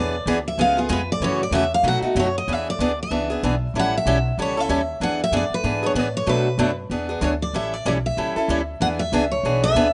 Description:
acoustic string swing (jazz manouche); 190 BPM; 4/4; swing 60% on 8ths; E mixolydian; A4 = 442 Hz
picked steel-string acoustic guitar; melody; 0.0-9.9 s; G#4 to F#5; -26 LUFS; equal
picked steel-string acoustic guitar; accompaniment; 0.0-9.9 s; B2 to A4; -25 LUFS; equal
upright bass; bass; 0.0-9.9 s; A1 to B2; -29 LUFS; equal
studio reverb; rough home demo mix, nothing above 10.8 kHz; -22 LUFS; mono
0.0-2.5 A section; 2.5-9.9 B section
steel-string acoustic guitar solo 0.0-2.5
0.0 E7; 0.6 C#7; 1.2 F#m7; 1.8 B7; 2.5 E7; 3.7 A7; 5.0 E7; 6.3 Bm7; 6.9 E7; 7.5 A7; 8.8 E7

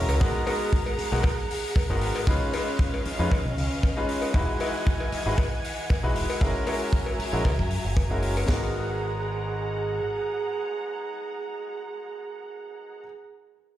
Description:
nu-disco, nu disco; 116 BPM; 4/4; swing 53% on 16ths; G# minor; A4 = 440 Hz
bright grand piano; accompaniment; 0.0-13.0 s; G#3 to B4; -31 LUFS; left 1 dB; analog delay
dark studio string section; sustained chords; 0.0-13.0 s; E3 to A#5; -32 LUFS; right 3 dB; sidechain pumping
picked electric bass with an envelope filter; bass; 0.0-10.0 s; E1 to F#2; -28 LUFS; equal
hi-hat and shaker; drums; 0.1-8.5 s; -38 LUFS; left 5 dB; studio reverb
cowbell; percussion; 0.1-8.5 s; -36 LUFS; left 3 dB
tight funk drum kit; drums; 0.2-8.6 s; kick drum, snare drum, splash cymbal; -24 LUFS; equal; studio reverb
light reverb, small room reverb; played on a big sound system in a bare room, stone room reverb; -24 LUFS; side -13 dB against mid
0.0-8.5 A section; 8.5-12.6 B section
0.2 G#m9; 2.3 C#9; 4.3 Emaj9; 6.4 F#9; 8.5 G#m9

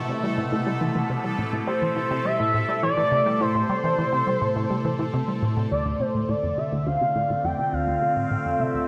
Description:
ambient, sequencer-driven space music; 104 BPM; 4/4; straight; A minor, D minor from 5.7 s; A4 = 439 Hz
pulse-width lead; melody; 0.0-8.9 s; C5 to G5; -27 LUFS; equal; chorus, tape echo
evolving wavetable pad; sustained chords; 0.0-8.9 s; B2 to A4; -30 LUFS; equal; phaser, built-in reverb
bubbling stepped-filter texture; texture; 0.0-5.7 s; A4; -38 LUFS; equal; chorus, built-in reverb
tight sequenced synth; riff; 0.1-8.9 s; D2 to G3; -30 LUFS; equal; chorus, phaser, tape echo
wet plate reverb, RT60 2.7 s; -24 LUFS; mono
0.0-5.7 A section; 5.7-8.9 B section
0.0 Amadd9; 5.7 Dm7

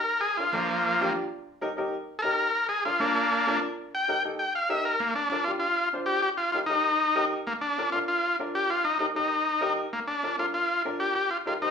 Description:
latin; 195 BPM; 4/4; straight; Bb major; A4 = 435 Hz
combo organ; melody; 0.0-11.7 s; F3 to G5; -25 LUFS; left 1 dB; plate reverb
clear upright piano; accompaniment; 0.4-11.7 s; D4 to C5; -33 LUFS; left 1 dB; plate reverb
wet studio reverb, RT60 0.5 s; rough home demo mix, studio reverb; -24 LUFS; side -6 dB against mid
0.0-5.0 A section; 5.0-11.7 B section
transistor combo organ solo 0.0-5.0
0.1 Bb; 1.3 Eb; 2.5 Bb; 3.8 Eb; 5.0 Bb (rootless); 6.2 Eb; 7.5 Bb; 8.7 Eb; 9.9 Bb; 11.2 Eb

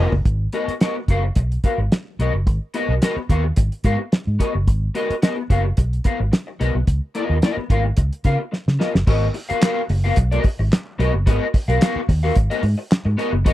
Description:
funk; 109 BPM; 4/4; straight; G# dorian; A4 = 440 Hz
electric guitar at the edge of break-up; accompaniment; 0.0-13.5 s; B3 to E#5; -23 LUFS; left 2 dB; ensemble chorus
vintage muted fingered electric bass; bass; 0.0-13.5 s; F#1 to C#3; -20 LUFS; equal
cloth-damped thuddy drum kit; drums; 0.1-13.5 s; crash cymbal, handclaps, hi-hat, kick drum, snare drum, toms; -17 LUFS; equal
small room ambience; dry, close 1970s-style studio recording; -17 LUFS; side -15 dB against mid
0.3-9.1 A section; 9.1-13.5 B section
drum fill 0.0, 8.5-9.1
0.3 G#m9; 6.9 C#13; 9.1 G#m9

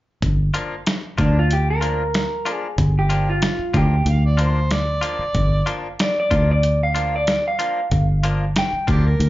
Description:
straight-eighth soul blues; 94 BPM; 4/4; swing 54% on 16ths; G minor; A4 = 441 Hz
fingered electric bass; bass; 0.2-9.3 s; G1 to D2; -18 LUFS; equal
dusty soul sampler-style drum kit; drums; 0.2-9.3 s; hi-hat, kick drum, snare drum; -23 LUFS; equal; overdrive
direct-recorded clean electric guitar; stabs; 0.5-9.1 s; F3 to F4; -28 LUFS; left 3 dB; harmonic tremolo, slapback echo
electric guitar through a small old amp; melody; 1.2-8.9 s; D4 to G5; -22 LUFS; equal
mellow harmonica; second line; 4.1-9.3 s; G4 to F5; -25 LUFS; right 1 dB; overdrive, slapback echo
digital ambience; live gig heard through the venue's PA, club reverb, nothing above 7.6 kHz; -17 LUFS; side -16 dB against mid
0.2-9.3 A section
0.2 Gm7

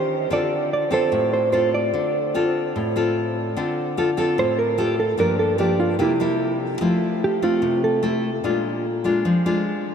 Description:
bossa nova; 148 BPM; 4/4; straight; D minor; A4 = 440 Hz
hollow-body jazz guitar; melody; 0.0-8.0 s; E4 to D5; -22 LUFS; right 3 dB
nylon-string guitar; accompaniment; 0.0-9.9 s; G2 to C5; -21 LUFS; left 2 dB
wet huge ambient reverb, RT60 7.7 s; in a vast, echoing space; -19 LUFS; side -7 dB against mid
0.0-3.6 A section; 3.6-9.9 B section
hollow-body jazz guitar solo 3.6-9.9
0.3 Dm7; 5.2 Gm7; 6.0 C7; 6.8 Fmaj7; 8.4 Bb7

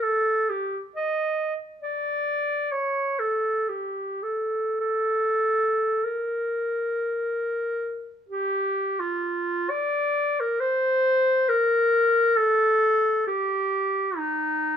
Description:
classical, free, expressive piece for unaccompanied clarinet; 33-72 BPM; 4/4; rubato; G minor; A4 = 438 Hz
warm clarinet; solo; 0.0-14.8 s; Eb4 to Eb5; -22 LUFS; equal
light reverb; minimal, uncompressed stereo recording; -22 LUFS; side -8 dB against mid
0.0-9.7 A section; 9.7-14.8 B section

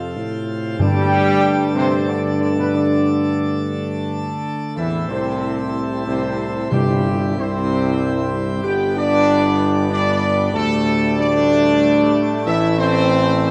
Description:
classical; 94 BPM; 3/4; straight; A4 = 440 Hz
dark trumpet section; melody; 0.0-13.5 s; G4 to G5; -26 LUFS; equal
clear trombone section; sustained chords; 0.0-13.5 s; G2 to B3; -28 LUFS; equal
pipe organ, plenum; sustained chords; 0.0-13.5 s; G2 to C5; -27 LUFS; equal
warm French horn section; sustained chords; 0.0-13.5 s; G3 to G4; -24 LUFS; equal
warm tuba; bass; 0.0-13.5 s; G1 to A2; -23 LUFS; equal
timpani; percussion; 0.8-1.7, 6.7-7.7 s; G2 to C3; -24 LUFS; equal
moderate scoring stage reverb, RT60 1.6 s; -18 LUFS; mono
0.0-4.8 A section; 4.8-13.5 B section
0.0 F; 0.8 Gsus2; 4.8 Am; 6.7 C/G; 8.6 G; 10.5 Dsus4; 12.5 Am

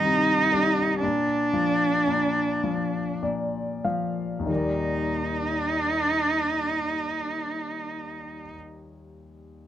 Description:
acoustic folk-pop ballad; 30-41 BPM (dotted quarters); 6/8; straight; Eb major; A4 = 439 Hz
rich cello; melody; 0.0-8.5 s; D4 to Eb4; -24 LUFS; right 2 dB
clear concert grand piano; accompaniment; 0.0-9.7 s; C2 to F5; -28 LUFS; left 3 dB
light reverb; dark, warm production; -23 LUFS; side -11 dB against mid
0.0-4.5 A section; 4.5-8.5 B section
slowing down 0.0-4.5
0.0 Cm; 1.0 Bb; 4.5 Ebmaj7

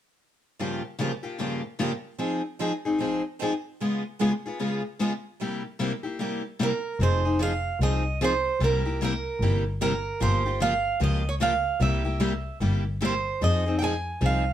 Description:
acoustic string swing (jazz manouche); 150 BPM; 4/4; swing 63% on 8ths; F minor; A4 = 439 Hz
picked steel-string acoustic guitar; accompaniment; 0.6-14.4 s; G2 to Ab4; -28 LUFS; left 3 dB
picked steel-string acoustic guitar; accompaniment; 0.6-14.4 s; G2 to Ab4; -33 LUFS; right 5 dB
picked steel-string acoustic guitar; melody; 6.6-14.5 s; Bb4 to Ab5; -27 LUFS; right 4 dB; slapback echo
dark double bass; bass; 7.0-14.5 s; F1 to F2; -26 LUFS; left 1 dB
light reverb; -24 LUFS; side -11 dB against mid
0.6-7.0 A section; 7.0-14.5 B section
0.6 Gm7b5; 2.2 Fm7; 3.8 Db7; 5.4 C7; 7.0 Fm7; 8.6 C7; 10.2 Gm7b5; 11.8 C7; 13.4 Fm7

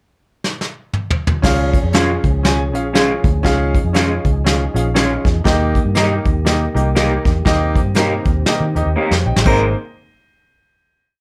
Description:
uptempo 1960s-style soul; 120 BPM; 4/4; swing 59% on 8ths; A4 = 440 Hz
vintage brush drum kit; drums; 0.4-9.6 s; crash cymbal, hi-hat, kick drum, snare drum, toms; -20 LUFS; equal
clear concert grand piano; accompaniment; 1.4-9.7 s; Bb3 to Ab5; -23 LUFS; equal
mellow tonewheel organ; sustained chords; 1.4-9.7 s; Eb3 to Bb4; -30 LUFS; equal; slow rotary speaker, overdrive, chorus vibrato
vintage muted fingered electric bass; bass; 1.4-9.7 s; Ab1 to Eb3; -21 LUFS; equal
electric guitar through a small old amp; stabs; 1.9-9.6 s; Bb3 to Bb4; -21 LUFS; equal; subtle chorus
light reverb; -16 LUFS; mono
0.0-1.4 pickup bar; 1.4-9.5 pre-chorus; 9.5-11.2 final chord
drum fill 0.4-1.4, 9.0-9.5
0.0 N.C.; 1.4 Db; 5.5 Eb; 9.5 Abadd9

